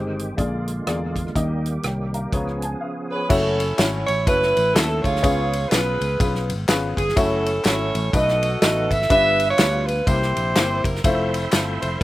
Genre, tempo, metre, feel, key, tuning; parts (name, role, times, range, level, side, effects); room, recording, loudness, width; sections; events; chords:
uptempo gospel; 124 BPM; 4/4; swing 61% on 8ths; A4 = 441 Hz
warm upright piano; accompaniment; 0.0-11.8 s; G2 to Bb5; -26 LUFS; left 2 dB
bright tonewheel organ; sustained chords; 0.0-3.3, 11.0-12.0 s; D3 to C6; -30 LUFS; right 2 dB; fast rotary speaker, chorus vibrato
fingered electric bass; bass; 0.0-12.0 s; F1 to Fb2; -26 LUFS; equal
natural country drum kit; drums; 0.2-12.0 s; crash cymbal, hi-hat, kick drum, ride cymbal, rim click, snare drum; -23 LUFS; equal
clear saxophone section; melody; 3.1-12.0 s; C4 to E5; -21 LUFS; right 1 dB; slapback echo
tambourine and handclaps; percussion; 3.3-11.9 s; -33 LUFS; left 3 dB
little or no reverb; recorded outdoors, with no room sound; -18 LUFS; side -16 dB against mid
0.0-3.3 A section; 3.3-12.0 B section
upright piano fill 2.3-3.3
0.4 Bb7; 1.4 Eb; 2.3 Db7; 3.3 F#m7; 5.2 C#7; 7.2 F#m7; 8.1 B7; 9.1 G7; 10.1 C7; 11.0 Fmaj7